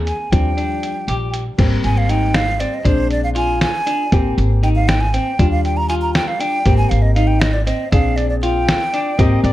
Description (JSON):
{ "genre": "progressive instrumental, band music in an uneven meter", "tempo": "237 BPM (eighths)", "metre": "5/8", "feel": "straight", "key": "Ab lydian", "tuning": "A4 = 441 Hz", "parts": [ { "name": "warm baby grand piano", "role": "accompaniment", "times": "0.0-9.5 s", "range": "F3 to Ab4", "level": "-24 LUFS", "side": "left 4 dB", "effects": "none" }, { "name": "semi-hollow electric guitar", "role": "arpeggios", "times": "0.0-9.5 s", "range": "C4 to Ab4", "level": "-24 LUFS", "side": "equal", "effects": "none" }, { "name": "upright bass", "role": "bass", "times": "0.0-9.5 s", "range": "Ab1 to Eb2", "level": "-18 LUFS", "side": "equal", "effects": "none" }, { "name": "breathy hollow jazz flute", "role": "melody", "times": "0.1-9.5 s", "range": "C5 to Bb5", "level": "-22 LUFS", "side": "right 1 dB", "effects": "none" }, { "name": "lo-fi sampler-style drum kit", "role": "drums", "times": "0.1-9.5 s", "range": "crash cymbal, hi-hat, kick drum, snare drum", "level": "-19 LUFS", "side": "equal", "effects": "none" }, { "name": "warm flugelhorn", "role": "second line", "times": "8.9-9.5 s", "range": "D5 to Eb5", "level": "-24 LUFS", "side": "left 2 dB", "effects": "slapback echo" } ], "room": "light reverb, small room reverb", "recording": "dark, warm production", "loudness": "-14 LUFS", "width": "side -15 dB against mid", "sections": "0.0-1.6 A section; 1.6-9.5 B section", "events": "break 0.6-1.6; flute solo 1.6-9.5", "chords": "0.3 Ebmaj9; 1.6 Abmaj7; 2.9 Bb7; 4.1 Abmaj7; 5.4 Ebmaj9; 6.7 Abmaj7; 7.9 Bb7" }